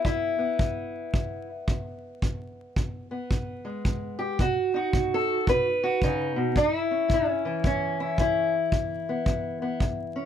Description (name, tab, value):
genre	acoustic country blues, solo or duo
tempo	111 BPM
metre	4/4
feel	swing 62% on 8ths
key	E major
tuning	A4 = 440 Hz
part	fingerpicked steel-string acoustic guitar	melody	0.0-10.3 s	E2 to B4	-26 LUFS	left 1 dB	none
part	kick drum	drums	0.0-10.0 s	none	-28 LUFS	equal	none
room	moderate small room ambience, RT60 0.5 s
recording	vinyl crackle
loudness	-24 LUFS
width	side -9 dB against mid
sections	0.0-10.3 A section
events	none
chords	0.0 E5; 4.4 B; 6.6 A; 8.7 E5